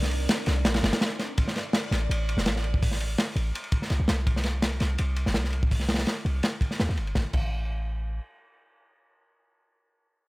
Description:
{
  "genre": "drum and bass, jungle",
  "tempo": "166 BPM",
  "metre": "4/4",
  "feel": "straight",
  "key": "unclear",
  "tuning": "A4 = 440 Hz",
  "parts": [
    { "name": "airy breathy pad", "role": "sustained chords", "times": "0.0-1.3 s", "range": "C4 to Bb4", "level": "-40 LUFS", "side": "right 1 dB", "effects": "chorus" },
    { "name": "warm 808-style bass", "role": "bass", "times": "0.0-8.2 s", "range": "E1 to Eb2", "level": "-27 LUFS", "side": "equal", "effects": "tube saturation" },
    { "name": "crunchy breakbeat drum kit", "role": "drums", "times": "0.0-7.4 s", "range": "crash cymbal, hi-hat, kick drum, ride cymbal, snare drum", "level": "-26 LUFS", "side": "equal", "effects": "none" },
    { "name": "backwards swelling texture", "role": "texture", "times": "0.0-1.4 s", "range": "D5", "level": "-41 LUFS", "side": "equal", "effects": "built-in reverb" }
  ],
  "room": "little or no reverb",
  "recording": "none",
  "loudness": "-24 LUFS",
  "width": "side -22 dB against mid",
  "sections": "0.0-1.4 A section; 1.4-7.2 B section; 7.2-10.0 C section",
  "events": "drop 0.0-1.4; kick drops out 0.6-1.4",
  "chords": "0.0 Cm9; 1.4 N.C.",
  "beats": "0.29 0.65 1.01 | 1.37 1.73 2.10 2.46 | 2.82 3.18 3.54 3.90 | 4.26 4.62 4.99 5.35 | 5.71 6.07 6.43 6.79 | 7.16 7.52 7.88"
}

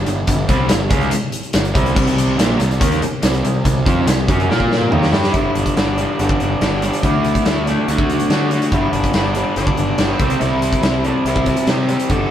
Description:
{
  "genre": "classic rock",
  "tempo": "142 BPM",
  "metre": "4/4",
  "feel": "straight",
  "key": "unclear",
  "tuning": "A4 = 440 Hz",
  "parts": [
    { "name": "raw garage guitar", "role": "riff", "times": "0.0-12.3 s", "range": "G2 to Bb4", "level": "-19 LUFS", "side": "equal", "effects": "overdrive" },
    { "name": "fuzz picked electric bass", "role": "bass", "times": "0.0-12.2 s", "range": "G1 to D3", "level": "-21 LUFS", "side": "equal", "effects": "overdrive" },
    { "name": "big rock drum kit", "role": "drums", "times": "0.1-12.2 s", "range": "crash cymbal, hi-hat, kick drum, snare drum, toms", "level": "-18 LUFS", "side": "equal", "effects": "none" },
    { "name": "overdriven harmonica", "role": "melody", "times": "4.9-12.3 s", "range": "F#3 to A4", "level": "-24 LUFS", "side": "left 1 dB", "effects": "none" }
  ],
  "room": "moderate stone room reverb, RT60 1.3 s",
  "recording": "band playing live in one room",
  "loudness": "-14 LUFS",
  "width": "side -10 dB against mid",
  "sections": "0.0-5.3 A section; 5.3-12.3 B section",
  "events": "drum fill 4.5-5.3",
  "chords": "0.0 G5; 2.0 C5; 4.5 Bb5; 4.9 Ebmaj7; 5.3 G5; 7.0 D; 8.7 G5; 10.2 C",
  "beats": "| 0.29 0.71 1.13 1.55 | 1.97 2.39 2.81 3.23 | 3.66 4.08 4.50 4.92 | 5.34 5.76 6.19 6.61 | 7.03 7.46 7.88 8.30 | 8.72 9.14 9.57 9.99 | 10.41 10.83 11.26 11.68 | 12.10"
}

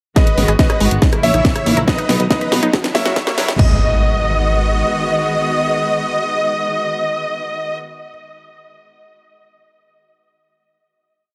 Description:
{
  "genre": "uplifting trance",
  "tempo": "140 BPM",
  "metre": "4/4",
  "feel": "straight",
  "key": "G# minor",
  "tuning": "A4 = 442 Hz",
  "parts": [
    { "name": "dense compressed supersaw", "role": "melody", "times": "0.2-7.8 s", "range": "B4 to E5", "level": "-22 LUFS", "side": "equal", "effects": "vintage 12-bit sampler grit, sidechain pumping, tape echo" },
    { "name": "clear grand piano", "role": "second line", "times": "0.2-8.1 s", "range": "D#5 to E5", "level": "-27 LUFS", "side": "equal", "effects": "sidechain pumping, tape echo" },
    { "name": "warm symphonic string section", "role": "sustained chords", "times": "0.2-7.8 s", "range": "C#3 to F#4", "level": "-25 LUFS", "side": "equal", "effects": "sidechain pumping" },
    { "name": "unison pluck", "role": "arpeggios", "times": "0.2-3.8 s", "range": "F#3 to B4", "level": "-26 LUFS", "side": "equal", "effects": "none" },
    { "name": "house drum kit", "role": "drums", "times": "0.2-3.7 s", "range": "crash cymbal, kick drum, toms", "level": "-17 LUFS", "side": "equal", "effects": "none" },
    { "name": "house drum kit", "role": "drums", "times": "0.2-3.6 s", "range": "hi-hat, rim click, snare drum", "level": "-23 LUFS", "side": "equal", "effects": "sidechain pumping on hats" },
    { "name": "riser and impact", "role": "sound effects", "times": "2.5-8.1 s", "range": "none", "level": "-28 LUFS", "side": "equal", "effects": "none" },
    { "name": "plucky analog bass", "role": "bass", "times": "0.4-4.8 s", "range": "F#1 to B1", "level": "-20 LUFS", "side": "equal", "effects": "sidechain pumping" }
  ],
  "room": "light reverb",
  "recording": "high-pass filter",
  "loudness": "-16 LUFS",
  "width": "mono",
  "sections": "0.2-3.6 build; 3.6-7.0 final chord",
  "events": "build-up 0.2-3.6; drum fill 0.2-3.6; filter sweep on synth arpeggio sound 0.2-3.6; filter sweep 0.2-3.6",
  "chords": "0.2 G#m7; 1.0 A#dim; 1.9 Badd9; 2.7 F#7; 3.6 G#m7",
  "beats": "| 0.16 0.59 1.02 1.45 | 1.88 2.31 2.73 3.16 | 3.59 4.02 4.45 4.88 | 5.31 5.73 6.16 6.59"
}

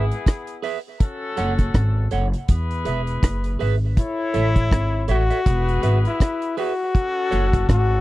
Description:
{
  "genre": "roots reggae",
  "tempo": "81 BPM",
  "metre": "4/4",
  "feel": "swing 58% on 16ths",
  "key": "E major",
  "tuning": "A4 = 440 Hz",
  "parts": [
    { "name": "warm horn section", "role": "second line", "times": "0.0-8.0 s", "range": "B3 to C#5", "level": "-31 LUFS", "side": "left 4 dB", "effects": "tape echo" },
    { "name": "clean electric guitar", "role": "accompaniment", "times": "0.0-7.5 s", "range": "G#4 to F#5", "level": "-28 LUFS", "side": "right 8 dB", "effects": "lush chorus, tape echo" },
    { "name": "upright bass", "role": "bass", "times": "0.0-8.0 s", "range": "E1 to E2", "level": "-20 LUFS", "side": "equal", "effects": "none" },
    { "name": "deep reggae drum kit", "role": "drums", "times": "0.1-7.9 s", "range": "hi-hat, kick drum, rim click", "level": "-18 LUFS", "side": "equal", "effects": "none" },
    { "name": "brilliant trombone", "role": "melody", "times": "4.0-8.0 s", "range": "E4 to F#4", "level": "-23 LUFS", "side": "left 3 dB", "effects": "tape echo" }
  ],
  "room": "little or no reverb",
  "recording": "dry, close 1970s-style studio recording",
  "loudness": "-19 LUFS",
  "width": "side -17 dB against mid",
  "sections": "0.0-8.0 A section",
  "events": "none",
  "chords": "0.0 E; 1.0 F#m; 2.5 E; 4.0 A; 5.5 E; 6.9 F#m",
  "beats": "0.26 | 1.00 1.75 2.49 3.23 | 3.97 4.72 5.46 6.20 | 6.95 7.69"
}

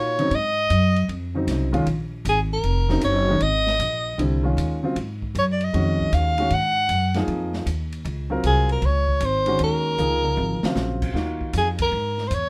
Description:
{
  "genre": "modal jazz",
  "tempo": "155 BPM",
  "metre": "4/4",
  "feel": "swing 66% on 8ths",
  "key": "Eb dorian",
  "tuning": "A4 = 442 Hz",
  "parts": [
    { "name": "clear soprano saxophone", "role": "melody", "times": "0.0-12.5 s", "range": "Ab4 to Gb5", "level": "-25 LUFS", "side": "equal", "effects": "none" },
    { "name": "clear baby grand piano", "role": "accompaniment", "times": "0.0-11.8 s", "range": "Db3 to Bb4", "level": "-28 LUFS", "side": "equal", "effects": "none" },
    { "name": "upright bass", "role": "bass", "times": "0.0-12.5 s", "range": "F1 to Bb2", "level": "-26 LUFS", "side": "equal", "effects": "none" },
    { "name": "open jazz drum kit", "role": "drums", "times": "0.2-12.4 s", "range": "crash cymbal, hi-hat, kick drum, ride cymbal, snare drum, toms", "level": "-36 LUFS", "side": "equal", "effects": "none" }
  ],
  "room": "light reverb",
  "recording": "none",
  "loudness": "-22 LUFS",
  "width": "mono",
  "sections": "0.0-11.2 A section; 11.2-12.5 A section",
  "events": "drum fill 10.0-10.8; band accent 11.7",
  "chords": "0.0 Eb13sus4; 5.0 Ab13sus4; 11.2 Ebsus4",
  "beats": "| 0.32 0.70 1.09 1.48 | 1.86 2.25 2.64 3.03 | 3.41 3.80 4.19 4.57 | 4.96 5.35 5.73 6.12 | 6.51 6.89 7.28 7.67 | 8.05 8.44 8.83 9.22 | 9.60 9.99 10.38 10.76 | 11.15 11.54 11.93 12.31"
}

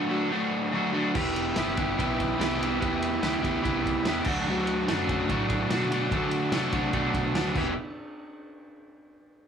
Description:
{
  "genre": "garage rock duo or trio",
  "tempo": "145 BPM",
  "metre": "4/4",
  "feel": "straight",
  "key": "unclear",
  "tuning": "A4 = 439 Hz",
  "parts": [
    { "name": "overdriven electric guitar", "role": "riff", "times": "0.0-7.7 s", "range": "D3 to G4", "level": "-26 LUFS", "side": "equal", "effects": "none" },
    { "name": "combo organ", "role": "sustained chords", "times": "1.1-7.8 s", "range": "F#4 to E5", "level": "-38 LUFS", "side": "equal", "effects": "spring reverb" },
    { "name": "fuzz fingered electric bass", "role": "bass", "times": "1.1-7.7 s", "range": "E1 to D3", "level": "-34 LUFS", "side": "right 1 dB", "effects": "overdrive, tube saturation" },
    { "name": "vintage drum kit", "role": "drums", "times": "1.1-7.7 s", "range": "crash cymbal, kick drum, ride cymbal, snare drum", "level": "-32 LUFS", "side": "right 1 dB", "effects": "none" }
  ],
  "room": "light reverb",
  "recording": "none",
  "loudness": "-24 LUFS",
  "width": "side -7 dB against mid",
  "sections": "0.0-7.8 A section; 7.8-9.4 B section",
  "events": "drum fill 7.6",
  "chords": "0.0 D; 1.1 Em; 4.3 D; 7.6 Em; 7.8 N.C.",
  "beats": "0.32 0.73 | 1.15 1.56 1.98 2.39 | 2.81 3.22 3.64 4.05 | 4.46 4.88 5.29 5.70 | 6.12 6.53 6.94 7.35"
}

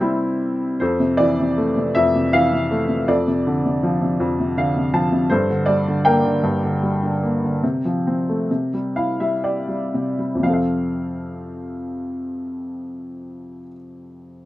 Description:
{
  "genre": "classical, lyrical solo piano",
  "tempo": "58-82 BPM",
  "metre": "3/4",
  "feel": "rubato",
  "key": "F major",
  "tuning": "A4 = 440 Hz",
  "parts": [
    { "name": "clear upright piano", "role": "solo", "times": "0.0-14.5 s", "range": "F2 to A5", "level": "-18 LUFS", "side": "equal", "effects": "none" }
  ],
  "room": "light reverb",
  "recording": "close, detailed microphones",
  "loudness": "-18 LUFS",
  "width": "side -16 dB against mid",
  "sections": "0.8-10.4 A section; 10.4-13.5 B section",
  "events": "upright piano fill 4.2-5.3, 8.5-10.4; slowing down 5.3-10.4",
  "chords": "0.0 C; 0.8 Fmaj7; 3.1 Dm7/F; 5.3 Gmadd9; 7.6 F/C; 8.5 C; 10.4 F",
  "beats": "0.01 | 0.81 1.58 2.33 | 3.08 3.82 4.56 | 5.29 6.04 6.82 | 7.63 8.49 9.42 | 10.43 11.43 12.44"
}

